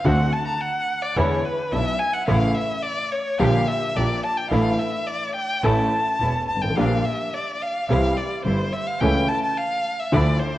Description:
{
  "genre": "tango",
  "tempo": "107 BPM",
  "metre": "4/4",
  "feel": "rubato",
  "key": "unclear",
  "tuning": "A4 = 442 Hz",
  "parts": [
    { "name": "warm violin", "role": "second line", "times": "0.0-10.6 s", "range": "B4 to Bb5", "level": "-24 LUFS", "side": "left 1 dB", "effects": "none" },
    { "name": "dark upright piano", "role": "accompaniment", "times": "0.0-10.4 s", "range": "E1 to A4", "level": "-24 LUFS", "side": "left 1 dB", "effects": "none" },
    { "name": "muted studio string section", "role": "stabs", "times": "0.1-10.4 s", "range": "F3 to G4", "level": "-31 LUFS", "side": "right 2 dB", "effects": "none" },
    { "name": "bright double bass", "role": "bass", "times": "0.1-10.4 s", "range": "E1 to E2", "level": "-24 LUFS", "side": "right 1 dB", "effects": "none" }
  ],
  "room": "moderate concert hall reverb, RT60 1.7 s",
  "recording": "worn, warbling old tape, cassette tape, warbly pitch drift",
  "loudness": "-20 LUFS",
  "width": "side -15 dB against mid",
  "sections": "0.0-10.6 A section",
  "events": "violin solo 0.0-10.6",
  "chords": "0.1 D7; 1.2 E7; 2.3 A; 3.4 Gm/Bb; 4.5 Asus4; 5.6 A; 6.8 Bb6; 7.9 C; 9.0 A/C#",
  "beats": "| 0.05 0.61 1.17 1.73 | 2.28 2.84 3.40 3.96 | 4.52 5.08 5.64 6.21 | 6.77 7.34 7.90 8.45 | 9.01 9.57 10.12"
}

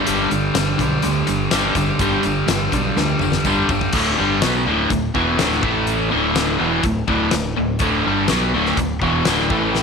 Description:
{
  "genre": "classic rock",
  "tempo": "124 BPM",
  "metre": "4/4",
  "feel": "straight",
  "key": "unclear",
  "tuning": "A4 = 439 Hz",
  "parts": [
    { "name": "biting overdriven guitar", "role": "riff", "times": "0.0-9.8 s", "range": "D2 to B3", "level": "-22 LUFS", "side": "equal", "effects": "none" },
    { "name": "overdriven electric guitar", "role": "riff", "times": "0.0-9.8 s", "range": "D2 to B3", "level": "-22 LUFS", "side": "left 11 dB", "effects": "none" },
    { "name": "overdriven electric guitar", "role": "riff", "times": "0.0-9.8 s", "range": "D2 to B3", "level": "-22 LUFS", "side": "right 11 dB", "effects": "none" },
    { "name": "growling fingered electric bass", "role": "bass", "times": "0.1-9.8 s", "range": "D1 to D2", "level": "-26 LUFS", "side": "equal", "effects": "overdrive" },
    { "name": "huge arena drum kit", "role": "drums", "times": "0.1-9.8 s", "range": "crash cymbal, hi-hat, kick drum, snare drum, toms", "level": "-24 LUFS", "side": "left 4 dB", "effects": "none" },
    { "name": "tambourine", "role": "percussion", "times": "0.1-9.4 s", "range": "none", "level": "-37 LUFS", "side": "left 13 dB", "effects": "none" }
  ],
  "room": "light reverb, small room reverb",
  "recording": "1960s-style stereo with parts hard left and right",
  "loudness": "-16 LUFS",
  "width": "side -5 dB against mid",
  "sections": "0.0-3.9 A section; 3.9-9.8 B section",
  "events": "drum fill 3.0-3.9",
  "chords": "0.0 G5; 3.9 D; 5.6 A5; 6.1 D",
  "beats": "| 0.08 0.56 1.04 1.53 | 2.01 2.49 2.98 3.46 | 3.94 4.43 4.91 5.39 | 5.88 6.36 6.85 7.33 | 7.82 8.30 8.79 9.27 | 9.75"
}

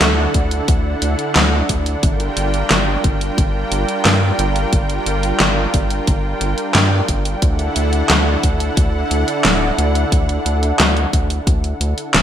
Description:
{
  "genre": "synthwave",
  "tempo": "89 BPM",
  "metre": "4/4",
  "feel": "straight",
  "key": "unclear",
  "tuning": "A4 = 436 Hz",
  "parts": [
    { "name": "lush unison pad", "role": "sustained chords", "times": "0.0-12.2 s", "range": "D3 to G5", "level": "-20 LUFS", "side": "right 1 dB", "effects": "chorus, sidechain pumping" },
    { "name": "round analog bass", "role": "bass", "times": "0.0-12.2 s", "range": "D1 to G2", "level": "-19 LUFS", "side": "equal", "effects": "tube saturation, sidechain pumping" },
    { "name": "pop drum kit", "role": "drums", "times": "0.0-12.2 s", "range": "handclaps, hi-hat, snare drum", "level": "-18 LUFS", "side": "equal", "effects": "gated reverb" },
    { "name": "electronic kick drum", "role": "drums", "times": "0.3-11.6 s", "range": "none", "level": "-18 LUFS", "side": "equal", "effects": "none" }
  ],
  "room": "moderate plate reverb, RT60 1.9 s",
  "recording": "bright 1980s-style digital production",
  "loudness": "-14 LUFS",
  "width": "side -10 dB against mid",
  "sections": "0.0-12.2 A section",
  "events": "none",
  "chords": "0.0 Dadd9; 2.0 Gm7; 7.4 Dadd9",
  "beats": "0.01 0.68 1.36 | 2.03 2.71 3.38 4.05 | 4.73 5.40 6.08 6.75 | 7.42 8.10 8.77 9.45 | 10.12 10.79 11.47 12.14"
}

